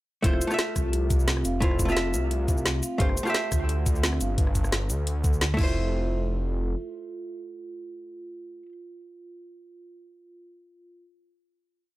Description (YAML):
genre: liquid drum and bass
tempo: 174 BPM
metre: 4/4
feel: swing 53% on 16ths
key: F major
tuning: A4 = 440 Hz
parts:
  - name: hollow-body jazz guitar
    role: accompaniment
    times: 0.2-8.7 s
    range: A3 to E5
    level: -30 LUFS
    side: equal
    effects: tape echo
  - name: vibraphone with soft mallets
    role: arpeggios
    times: 0.2-5.9 s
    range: C4 to F5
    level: -36 LUFS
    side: right 2 dB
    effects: tape echo
  - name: swelling detuned saw bass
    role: bass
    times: 0.2-6.8 s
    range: F1 to D2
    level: -27 LUFS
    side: equal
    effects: tube saturation
  - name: electronic kick drum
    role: drums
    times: 0.2-5.7 s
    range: none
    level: -25 LUFS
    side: equal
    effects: studio reverb
  - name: garage drum kit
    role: drums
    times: 0.2-5.7 s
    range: crash cymbal, hi-hat, rim click, shaker, snare drum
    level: -29 LUFS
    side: equal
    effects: studio reverb
room: little or no reverb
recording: none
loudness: -23 LUFS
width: side -17 dB against mid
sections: 0.2-5.8 drop; 5.8-8.5 final hit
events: drop 0.2-5.8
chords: 0.2 Fmaj7; 3.0 G9sus4; 5.6 Fmaj7